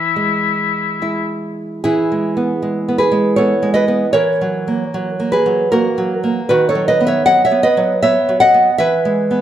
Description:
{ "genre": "romantic duo for oboe and classical guitar", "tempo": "78 BPM", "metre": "3/4", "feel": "rubato", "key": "E major", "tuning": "A4 = 439 Hz", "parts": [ { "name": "clear oboe", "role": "melody", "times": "0.0-1.4 s", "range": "E4", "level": "-18 LUFS", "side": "left 8 dB", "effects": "none" }, { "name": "nylon-string guitar", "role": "accompaniment", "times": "0.0-9.4 s", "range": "D#3 to F#5", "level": "-13 LUFS", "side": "right 1 dB", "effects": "none" } ], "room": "moderate recital hall reverb, RT60 1.3 s", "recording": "dark, warm production", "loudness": "-13 LUFS", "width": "side -11 dB against mid", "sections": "0.0-1.8 A section; 1.8-9.4 A section", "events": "none", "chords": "0.0 E; 4.2 F#7/E; 6.5 B/D#; 8.8 E" }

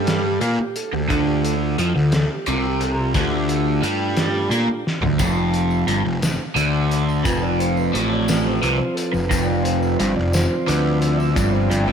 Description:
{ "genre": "psychedelic rock", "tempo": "58 BPM (dotted quarters)", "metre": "6/8", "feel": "straight", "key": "unclear", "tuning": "A4 = 440 Hz", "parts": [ { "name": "mellow tonewheel organ", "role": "sustained chords", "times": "0.0-11.9 s", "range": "F3 to E5", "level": "-25 LUFS", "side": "right 3 dB", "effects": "slow rotary speaker" }, { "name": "overdriven electric guitar", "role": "riff", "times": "0.0-11.9 s", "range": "F2 to Bb3", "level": "-20 LUFS", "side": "equal", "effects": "phaser" }, { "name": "fuzz picked electric bass", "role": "bass", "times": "0.0-11.9 s", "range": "F1 to Bb2", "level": "-24 LUFS", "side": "equal", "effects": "overdrive" }, { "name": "cloth-damped thuddy drum kit", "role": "drums", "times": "0.1-11.9 s", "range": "hi-hat, kick drum, snare drum, toms", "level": "-26 LUFS", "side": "equal", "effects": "none" }, { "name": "tambourine", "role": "percussion", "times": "5.2-11.5 s", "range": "none", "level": "-37 LUFS", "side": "left 4 dB", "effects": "none" } ], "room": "light reverb, small room ambience", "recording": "none", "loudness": "-17 LUFS", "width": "side -7 dB against mid", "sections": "0.0-11.9 A section", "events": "tonewheel organ solo 0.0-11.9; drum fill 4.9-5.2", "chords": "0.0 Dm; 5.2 F5" }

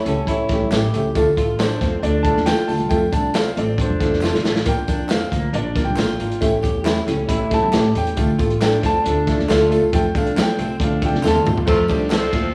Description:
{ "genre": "uptempo 1960s-style soul", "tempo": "137 BPM", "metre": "4/4", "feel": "straight", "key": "unclear", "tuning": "A4 = 440 Hz", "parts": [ { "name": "warm grand piano", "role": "melody", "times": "0.0-11.5 s", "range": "A4 to A5", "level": "-28 LUFS", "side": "equal", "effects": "slapback echo, plate reverb" }, { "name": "warm upright piano", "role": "accompaniment", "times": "0.1-12.4 s", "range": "A3 to C5", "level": "-24 LUFS", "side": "equal", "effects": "none" }, { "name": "electric guitar through a small old amp", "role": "riff", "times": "0.1-12.5 s", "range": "Bb3 to G4", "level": "-30 LUFS", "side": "equal", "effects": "spring reverb" }, { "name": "upright bass", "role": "bass", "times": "0.1-12.5 s", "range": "F1 to F3", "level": "-26 LUFS", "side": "equal", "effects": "none" }, { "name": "crunchy breakbeat drum kit", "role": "drums", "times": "0.1-12.4 s", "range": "hi-hat, kick drum, ride cymbal, snare drum, toms", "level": "-24 LUFS", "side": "equal", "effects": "none" }, { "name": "tambourine and handclaps", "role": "percussion", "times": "0.1-12.4 s", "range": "none", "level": "-41 LUFS", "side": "equal", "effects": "none" }, { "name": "clear horn section", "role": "second line", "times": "11.7-12.5 s", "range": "C3 to A4", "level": "-28 LUFS", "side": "equal", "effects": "none" } ], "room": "wet studio reverb, RT60 0.6 s", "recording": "studio reverb", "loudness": "-19 LUFS", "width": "mono", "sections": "0.0-11.7 A section", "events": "grand piano solo 0.0-11.7; drum fill 4.2-4.7, 11.2-11.7", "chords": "0.0 A7; 1.2 Dm; 2.9 F; 4.7 Bb; 6.4 A7; 8.2 Dm; 9.9 F" }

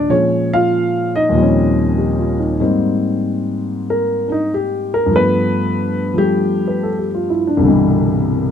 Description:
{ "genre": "solo jazz", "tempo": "96 BPM", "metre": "4/4", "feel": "swing 67% on 8ths", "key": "unclear", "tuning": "A4 = 440 Hz", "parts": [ { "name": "dark grand piano", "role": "solo", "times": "0.0-8.5 s", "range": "C2 to F5", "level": "-14 LUFS", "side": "left 1 dB", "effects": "none" } ], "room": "light reverb", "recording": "close, detailed microphones", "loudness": "-14 LUFS", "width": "side -8 dB against mid", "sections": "0.0-2.6 A section; 2.6-8.5 B section", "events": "grand piano solo 2.6-8.5", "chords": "0.1 Bbm7; 1.4 Eb13; 2.6 Abmaj9; 5.1 G9; 7.6 Cmaj9" }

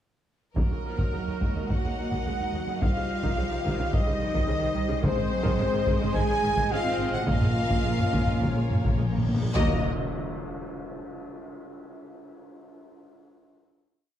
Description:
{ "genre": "cinematic, epic orchestral film score", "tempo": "107 BPM", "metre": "4/4", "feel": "straight", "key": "Eb dorian", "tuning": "A4 = 440 Hz", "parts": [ { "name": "rich studio violin section", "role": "melody", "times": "0.5-9.9 s", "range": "Bb4 to Ab5", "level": "-35 LUFS", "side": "left 3 dB", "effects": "none" }, { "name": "mellow hollow flute section", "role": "second line", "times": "0.6-9.9 s", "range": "Bb4 to Ab5", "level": "-36 LUFS", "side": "left 2 dB", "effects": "none" }, { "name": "rich symphonic violin section", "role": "second line", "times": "0.6-9.9 s", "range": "Bb4 to Eb5", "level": "-40 LUFS", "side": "left 4 dB", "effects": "none" }, { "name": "warm studio viola section", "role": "accompaniment", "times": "0.6-9.9 s", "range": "Db3 to Ab4", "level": "-37 LUFS", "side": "right 1 dB", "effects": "none" }, { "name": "dark French horn section", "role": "sustained chords", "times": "0.6-9.8 s", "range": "Bb3 to Ab4", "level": "-35 LUFS", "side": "left 4 dB", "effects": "none" }, { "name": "warm trombone section", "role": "sustained chords", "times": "0.6-9.8 s", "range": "Eb3 to Db4", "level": "-40 LUFS", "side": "right 3 dB", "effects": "none" }, { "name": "mellow trumpet section", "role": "stabs", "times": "0.6-9.8 s", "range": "Bb4 to Ab5", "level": "-34 LUFS", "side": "right 1 dB", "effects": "none" }, { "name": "rich studio cello section", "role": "bass", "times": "0.6-9.9 s", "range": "Eb2 to C4", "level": "-33 LUFS", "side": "right 1 dB", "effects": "none" }, { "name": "rich studio double bass section", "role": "bass", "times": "0.6-9.9 s", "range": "Ab1 to Eb2", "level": "-32 LUFS", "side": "right 3 dB", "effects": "none" }, { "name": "taiko ensemble", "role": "drums", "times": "0.6-10.6 s", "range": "none", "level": "-28 LUFS", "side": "equal", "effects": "none" }, { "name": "timpani", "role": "percussion", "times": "0.6-1.4, 7.3-9.8 s", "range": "Bb2 to Eb3", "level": "-31 LUFS", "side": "left 2 dB", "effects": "none" }, { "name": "cymbal swell and tam-tam", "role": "percussion", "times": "7.3-11.8 s", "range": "none", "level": "-38 LUFS", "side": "left 1 dB", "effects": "none" }, { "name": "reverse cymbal and impact", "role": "sound effects", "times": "9.2-11.8 s", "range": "none", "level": "-38 LUFS", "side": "equal", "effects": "none" } ], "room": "wet scoring stage reverb, RT60 1.7 s", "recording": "dark, warm production", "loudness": "-24 LUFS", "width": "side -10 dB against mid", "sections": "0.6-9.6 theme; 9.6-11.8 final chord", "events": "timpani fill 7.3-9.6; reverse cymbal 9.2-9.6; band accent 9.6-10.1; impact 9.6-11.8", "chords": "0.6 Ebm; 2.8 Cm; 5.0 Ab; 7.3 Bbm; 9.6 Ebm" }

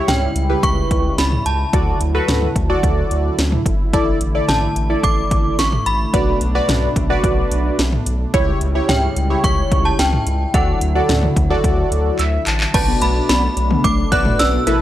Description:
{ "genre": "synth-pop", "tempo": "109 BPM", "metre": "4/4", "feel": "straight", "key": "B minor", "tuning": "A4 = 440 Hz", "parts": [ { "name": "warm analog keys", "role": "accompaniment", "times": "0.0-14.8 s", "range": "E4 to A5", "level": "-21 LUFS", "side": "equal", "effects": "chorus, phaser" }, { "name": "brassy analog pad", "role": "sustained chords", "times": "0.0-14.8 s", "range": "B2 to E4", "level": "-25 LUFS", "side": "equal", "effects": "chorus" }, { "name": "synth chime", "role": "melody", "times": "0.1-14.8 s", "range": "F#5 to F#6", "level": "-22 LUFS", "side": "equal", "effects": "ensemble chorus" }, { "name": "round analog bass", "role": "bass", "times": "0.1-14.8 s", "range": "G1 to D2", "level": "-20 LUFS", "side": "equal", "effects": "none" }, { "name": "house drum kit", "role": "drums", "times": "0.1-14.8 s", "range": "cowbell, crash cymbal, handclaps, hi-hat, kick drum, snare drum, toms", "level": "-19 LUFS", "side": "equal", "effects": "overdrive" }, { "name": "soft round pluck", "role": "arpeggios", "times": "12.7-14.8 s", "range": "A3 to D5", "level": "-24 LUFS", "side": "left 3 dB", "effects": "chorus" } ], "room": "little or no reverb", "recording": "dry, gritty hardware recording", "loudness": "-14 LUFS", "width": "side -13 dB against mid", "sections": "0.0-12.7 A section; 12.7-14.8 B section", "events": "synth keys fill 11.9-12.7; drum fill 12.2-12.7", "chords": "0.0 C#dim; 1.7 Dadd9; 3.9 Asus4; 6.1 Bm7; 8.3 C#dim; 10.5 Dadd9; 12.7 Bm7" }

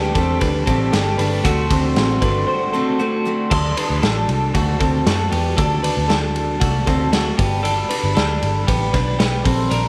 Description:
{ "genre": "jangly indie pop", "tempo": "116 BPM", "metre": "4/4", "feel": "straight", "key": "unclear", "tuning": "A4 = 441 Hz", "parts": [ { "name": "picked steel-string acoustic guitar", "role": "accompaniment", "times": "0.0-3.5 s", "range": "D3 to G4", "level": "-27 LUFS", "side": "equal", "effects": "none" }, { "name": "glass harmonica", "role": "sustained chords", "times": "0.0-9.9 s", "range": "F#4 to C6", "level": "-28 LUFS", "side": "equal", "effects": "none" }, { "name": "twelve-string electric guitar", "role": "arpeggios", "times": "0.0-9.9 s", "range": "A3 to C5", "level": "-24 LUFS", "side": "equal", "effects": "spring reverb, slapback echo" }, { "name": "vintage muted picked electric bass", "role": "bass", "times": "0.0-9.9 s", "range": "G1 to F#2", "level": "-23 LUFS", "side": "equal", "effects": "none" }, { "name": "raw garage drum kit", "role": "drums", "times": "0.2-9.8 s", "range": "crash cymbal, hi-hat, kick drum, ride cymbal, snare drum", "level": "-24 LUFS", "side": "equal", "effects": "none" } ], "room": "light reverb, small room reverb", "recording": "none", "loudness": "-18 LUFS", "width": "mono", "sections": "0.0-3.5 A section; 3.5-9.9 B section", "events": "break 2.5-3.5", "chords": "0.0 Gsus2; 1.4 D7; 3.5 D; 7.4 G" }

